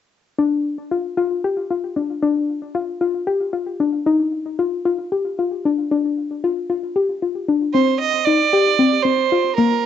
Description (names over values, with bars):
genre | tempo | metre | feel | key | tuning
progressive instrumental, progressive | 228 BPM (eighths) | 7/8 | straight | unclear | A4 = 443 Hz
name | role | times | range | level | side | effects
soft round pluck | arpeggios | 0.4-9.9 s | Bb3 to G4 | -18 LUFS | left 4 dB | chorus, cassette tape, analog delay
clear fiddle | melody | 7.7-9.9 s | Bb4 to Eb5 | -17 LUFS | right 10 dB | analog delay
room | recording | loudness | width
wet studio reverb, RT60 0.6 s | home recording on cassette, nothing above 8.0 kHz | -17 LUFS | side -9 dB against mid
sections
0.4-7.7 A section; 7.7-9.9 B section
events
none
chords
0.4 Dmadd11; 5.9 G5; 7.7 Cmadd9